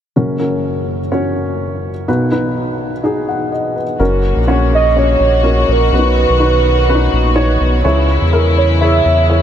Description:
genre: pop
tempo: 125 BPM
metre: 4/4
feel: straight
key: F# mixolydian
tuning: A4 = 441 Hz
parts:
  - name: dark upright piano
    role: accompaniment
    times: 0.2-9.4 s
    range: F#1 to F#5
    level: -16 LUFS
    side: left 1 dB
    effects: none
  - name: rich studio string section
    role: sustained chords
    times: 4.0-9.4 s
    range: C#3 to F#4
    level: -19 LUFS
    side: left 2 dB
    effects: none
  - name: round analog bass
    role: bass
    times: 4.0-9.4 s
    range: F#1 to E2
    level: -14 LUFS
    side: equal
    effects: none
  - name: warm velvety synth lead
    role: melody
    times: 4.7-9.2 s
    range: A#4 to E5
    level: -16 LUFS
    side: right 3 dB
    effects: chorus
room: moderate huge ambient reverb, RT60 7.7 s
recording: dreamy mix soaked in reverb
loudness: -12 LUFS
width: side -9 dB against mid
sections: 0.2-4.0 A section; 4.0-9.4 B section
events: none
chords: 0.2 F#; 2.1 B; 4.0 F#; 5.9 B; 7.8 C#m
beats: | 0.16 0.64 1.12 1.60 | 2.08 2.56 3.04 3.52 | 4.00 4.48 4.96 5.44 | 5.92 6.40 6.88 7.36 | 7.84 8.32 8.80 9.28

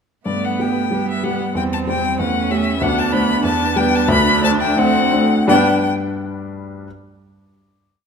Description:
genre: quick classical-period movement for piano quartet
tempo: 82-96 BPM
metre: 2/4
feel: rubato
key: G major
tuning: A4 = 439 Hz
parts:
  - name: rich violin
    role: melody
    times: 0.3-5.9 s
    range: D5 to B5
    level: -20 LUFS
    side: left 6 dB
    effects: none
  - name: rich cello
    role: second line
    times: 0.3-5.9 s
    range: G3 to B3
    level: -22 LUFS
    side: right 10 dB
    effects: none
  - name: rich viola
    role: accompaniment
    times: 0.3-5.9 s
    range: B3 to D4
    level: -23 LUFS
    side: right 4 dB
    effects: none
  - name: warm concert grand piano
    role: accompaniment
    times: 0.3-6.9 s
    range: D2 to D5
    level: -19 LUFS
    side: left 1 dB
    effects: none
room: wet recital hall reverb, RT60 1.6 s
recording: none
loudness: -15 LUFS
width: side -6 dB against mid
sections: 0.3-5.5 A section; 5.5-6.8 final chord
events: slowing down 2.2-5.5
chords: 0.3 G; 1.6 C/E; 2.2 A7/E; 2.8 D5; 3.4 Em; 4.1 D7; 5.5 G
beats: | 0.27 0.92 | 1.56 2.19 | 2.81 3.44 | 4.09 4.77 | 5.48 6.17

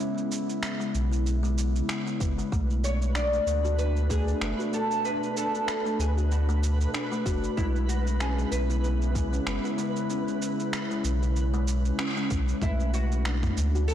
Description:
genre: organic downtempo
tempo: 95 BPM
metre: 4/4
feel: swing 56% on 16ths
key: B dorian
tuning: A4 = 440 Hz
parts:
  - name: warbly tape-like pad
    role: sustained chords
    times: 0.0-13.9 s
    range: B2 to E4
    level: -36 LUFS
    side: right 2 dB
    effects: chorus, built-in reverb, sidechain pumping
  - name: kalimba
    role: arpeggios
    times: 0.0-13.9 s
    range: G#3 to B4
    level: -32 LUFS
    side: left 3 dB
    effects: low-pass filter, digital delay
  - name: dusty soul sampler-style drum kit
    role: drums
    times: 0.0-13.9 s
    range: cabasa, finger snaps, toms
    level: -35 LUFS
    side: right 1 dB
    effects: soft clipping on snare
  - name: warm sub bass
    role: bass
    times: 0.9-13.9 s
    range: F#1 to D2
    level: -26 LUFS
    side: equal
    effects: transformer saturation, sidechain pumping
  - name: electronic kick drum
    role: drums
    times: 2.2-12.8 s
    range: none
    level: -30 LUFS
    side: equal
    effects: none
  - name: twinkling granular texture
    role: texture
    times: 2.5-12.6 s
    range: B4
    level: -40 LUFS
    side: right 2 dB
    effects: built-in reverb
  - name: oud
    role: melody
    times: 2.8-13.9 s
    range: E4 to D5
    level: -32 LUFS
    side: equal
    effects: tape echo
room: light reverb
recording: blown-out, overdriven recording, overdrive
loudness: -25 LUFS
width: side -10 dB against mid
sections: 0.0-12.6 A section; 12.6-13.9 A section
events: band accent 12.0-12.3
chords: 0.0 C#m7; 2.5 Bm7; 7.6 C#m7; 12.6 Bm7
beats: 0.62 1.26 1.89 | 2.52 3.15 3.78 4.42 | 5.05 5.68 6.31 6.94 | 7.57 8.20 8.84 9.47 | 10.10 10.73 11.36 11.99 | 12.62 13.26 13.89

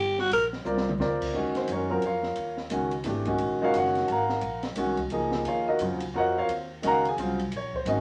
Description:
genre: modal jazz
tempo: 175 BPM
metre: 3/4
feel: swing 63% on 8ths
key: Eb dorian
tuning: A4 = 440 Hz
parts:
  - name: growling tenor saxophone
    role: melody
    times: 0.0-0.5 s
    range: F#4 to A#4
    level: -26 LUFS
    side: equal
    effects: none
  - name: upright bass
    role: bass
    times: 0.0-8.0 s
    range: Gb1 to Gb2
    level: -38 LUFS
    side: equal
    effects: none
  - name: open jazz drum kit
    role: drums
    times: 0.2-8.0 s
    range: crash cymbal, hi-hat, kick drum, ride cymbal, snare drum, toms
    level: -40 LUFS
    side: equal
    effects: none
  - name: warm concert grand piano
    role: accompaniment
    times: 0.7-8.0 s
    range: Db3 to Bb5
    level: -28 LUFS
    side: equal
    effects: none
room: wet studio reverb, RT60 0.5 s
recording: none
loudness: -27 LUFS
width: mono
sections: 0.0-1.3 A section; 1.3-8.0 A section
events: tenor saxophone solo 0.0-1.3; drum fill 0.7-1.0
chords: 0.3 A#; 1.3 Ebm9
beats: | 0.32 0.66 1.00 | 1.34 1.69 2.03 | 2.37 2.72 3.06 | 3.40 3.75 4.09 | 4.43 4.77 5.12 | 5.46 5.80 6.14 | 6.49 6.83 7.17 | 7.51 7.86

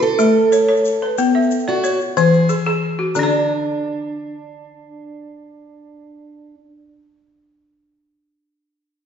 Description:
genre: west african traditional, West African string and xylophone music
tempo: 121 BPM (dotted quarters)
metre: 12/8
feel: straight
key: unclear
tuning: A4 = 444 Hz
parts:
  - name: picked steel-string acoustic guitar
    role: melody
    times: 0.0-6.5 s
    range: D4 to A4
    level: -20 LUFS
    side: right 3 dB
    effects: none
  - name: balafon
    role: arpeggios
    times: 0.0-6.7 s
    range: D3 to E5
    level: -16 LUFS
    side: left 3 dB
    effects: none
  - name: tube shaker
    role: percussion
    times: 0.2-3.3 s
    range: none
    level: -35 LUFS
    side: left 6 dB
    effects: none
room: wet recital hall reverb, RT60 1.7 s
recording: recorded in a church or concert hall, nothing above 7.8 kHz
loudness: -14 LUFS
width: side -8 dB against mid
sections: 0.0-3.2 A section; 3.2-7.1 B section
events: none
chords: 0.2 A; 1.2 Bm; 2.2 E; 3.2 N.C.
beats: 0.19 0.69 | 1.18 1.68 2.17 2.67 | 3.16 3.65 4.15 4.64 | 5.14 5.63 6.13 6.62

